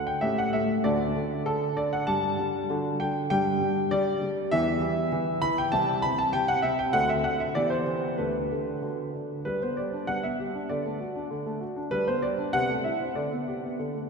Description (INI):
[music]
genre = classical-period piano sonatina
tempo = 97 BPM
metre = 2/4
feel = straight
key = D major, G major from 4.5 s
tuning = A4 = 438 Hz
[part]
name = clear grand piano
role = solo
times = 0.0-14.1 s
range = C2 to B5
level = -25 LUFS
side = equal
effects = none
[sound]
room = wet church reverb, RT60 3.9 s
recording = minimal, uncompressed stereo recording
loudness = -25 LUFS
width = side -4 dB against mid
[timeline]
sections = 0.0-9.5 A section; 9.5-14.1 B section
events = none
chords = 0.2 A7; 0.8 D; 2.1 G5; 2.7 D; 3.3 G5; 4.5 Em; 5.7 C6; 6.9 D7; 7.6 Em; 8.2 G/D; 8.8 D; 9.5 G; 10.7 D; 11.9 G; 12.5 Am/C; 13.2 G/D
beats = 0.22 | 0.85 1.47 | 2.08 2.69 | 3.31 3.92 | 4.52 5.12 | 5.73 6.34 | 6.94 7.56 | 8.19 8.83 | 9.46 10.08 | 10.70 11.31 | 11.93 12.54 | 13.17 13.80